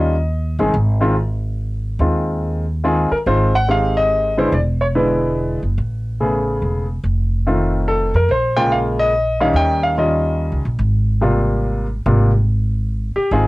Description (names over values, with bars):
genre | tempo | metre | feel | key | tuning
jazz piano trio | 143 BPM | 3/4 | swing 64% on 8ths | Ab major | A4 = 445 Hz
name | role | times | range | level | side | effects
warm grand piano | melody | 0.0-13.5 s | C3 to G5 | -17 LUFS | equal | cassette tape
upright bass | bass | 0.0-13.5 s | E1 to F2 | -18 LUFS | equal | none
room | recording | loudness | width
little or no reverb | home recording on cassette | -15 LUFS | side -20 dB against mid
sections
0.0-3.3 A section; 3.3-13.3 B section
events
none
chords
0.0 Eb; 0.7 Ab6; 4.5 E7; 5.8 Amaj9; 7.0 F7; 8.3 Bbm7; 9.6 Eb9; 10.8 Abmaj13